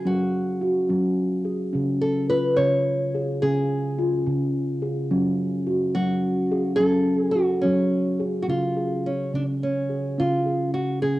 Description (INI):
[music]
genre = world meditative, meditative tuned percussion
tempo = 71 BPM (dotted quarters)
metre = 6/8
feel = straight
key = C# major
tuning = A4 = 440 Hz
[part]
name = nylon-string guitar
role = melody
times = 0.0-11.2 s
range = C#4 to C#5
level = -25 LUFS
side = equal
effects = none
[part]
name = steel tongue drum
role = arpeggios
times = 0.0-11.2 s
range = C#3 to G#4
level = -22 LUFS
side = equal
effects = cassette tape
[sound]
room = wet spring reverb, RT60 1.4 s, small room ambience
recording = home recording on cassette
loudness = -21 LUFS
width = side -17 dB against mid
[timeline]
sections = 0.0-8.5 A section; 8.5-11.2 B section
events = none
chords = 0.0 F#5; 1.7 C#; 5.1 F#5; 8.5 C#